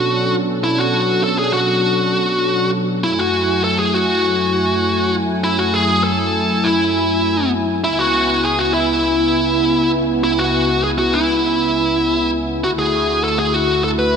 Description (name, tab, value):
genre	synthwave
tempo	100 BPM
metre	4/4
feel	straight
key	F# minor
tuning	A4 = 439 Hz
part	bluesy overdriven lead guitar	melody	0.0-14.2 s	E4 to B4	-16 LUFS	equal	distortion, ping-pong delay
part	brassy analog pad	sustained chords	0.0-14.2 s	C#2 to G#5	-19 LUFS	equal	chorus
room	moderate lush hall reverb, RT60 2.4 s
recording	bright 1980s-style digital production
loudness	-14 LUFS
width	side -6 dB against mid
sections	0.0-14.2 A section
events	none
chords	0.0 Bm7; 3.0 F#m7; 7.8 C#m7; 12.6 Dadd9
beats	0.04 | 0.64 1.24 1.84 2.44 | 3.04 3.64 4.24 4.84 | 5.44 6.04 6.64 7.24 | 7.84 8.44 9.04 9.64 | 10.24 10.84 11.44 12.04 | 12.64 13.24 13.84